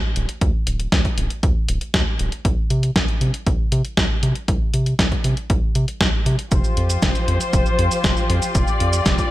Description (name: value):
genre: italo disco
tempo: 118 BPM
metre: 4/4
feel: straight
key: unclear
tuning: A4 = 440 Hz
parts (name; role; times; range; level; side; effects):
- round analog bass; bass; 0.2-9.2 s; D1 to C3; -22 LUFS; equal; none
- clean 12-bit digital drum machine; drums; 0.2-9.3 s; cabasa, hi-hat, snare drum; -23 LUFS; equal; gated reverb
- electronic kick drum; drums; 0.4-9.3 s; none; -21 LUFS; equal; none
- muted studio string section; sustained chords; 6.5-9.3 s; F3 to D5; -22 LUFS; left 2 dB; none
room: digital ambience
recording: none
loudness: -17 LUFS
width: side -16 dB against mid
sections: 0.0-9.3 A section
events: none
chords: 0.0 N.C.; 6.5 Fsus2